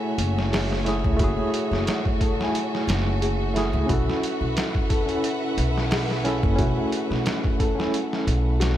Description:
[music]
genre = trip hop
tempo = 89 BPM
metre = 4/4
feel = swing 55% on 16ths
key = unclear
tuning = A4 = 439 Hz
[part]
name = tine electric piano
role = accompaniment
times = 0.0-8.8 s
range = A3 to G#5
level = -26 LUFS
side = equal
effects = medium tremolo, tape echo
[part]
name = rich studio violin section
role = sustained chords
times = 0.0-8.8 s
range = F#4 to F#5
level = -32 LUFS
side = right 1 dB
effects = vintage 12-bit sampler grit
[part]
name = felt-muted upright piano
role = arpeggios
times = 0.0-8.8 s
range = F#4 to A4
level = -32 LUFS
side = left 3 dB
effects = tape echo
[part]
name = upright bass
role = bass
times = 0.2-8.8 s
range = F#1 to C#2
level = -24 LUFS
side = equal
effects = none
[part]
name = trip hop sampler-style drum kit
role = drums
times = 0.2-8.8 s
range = hi-hat, kick drum, snare drum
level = -26 LUFS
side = equal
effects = none
[sound]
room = studio reverb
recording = none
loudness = -21 LUFS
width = side -12 dB against mid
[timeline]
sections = 0.0-8.8 A section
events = none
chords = 0.0 F#m7; 3.9 B7sus4

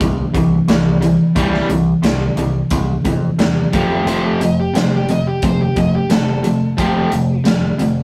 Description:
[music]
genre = classic rock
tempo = 88 BPM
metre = 4/4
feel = straight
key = C major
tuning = A4 = 440 Hz
[part]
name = crunchy overdriven guitar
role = riff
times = 0.0-8.0 s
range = C3 to C4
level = -21 LUFS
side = equal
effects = none
[part]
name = distorted electric guitar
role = riff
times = 0.0-8.0 s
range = F2 to G3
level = -20 LUFS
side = equal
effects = distortion
[part]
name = growling picked electric bass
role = bass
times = 0.0-8.0 s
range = F1 to F2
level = -27 LUFS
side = equal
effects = overdrive
[part]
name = big rock drum kit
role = drums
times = 0.0-8.0 s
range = hi-hat, kick drum, snare drum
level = -22 LUFS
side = equal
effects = none
[part]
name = crunchy overdriven guitar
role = second line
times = 4.1-7.4 s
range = G4 to Eb5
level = -27 LUFS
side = equal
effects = none
[sound]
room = moderate small room ambience, RT60 0.5 s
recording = rough rehearsal-room recording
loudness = -16 LUFS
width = mono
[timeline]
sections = 0.0-8.0 A section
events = none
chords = 0.0 C; 3.7 F

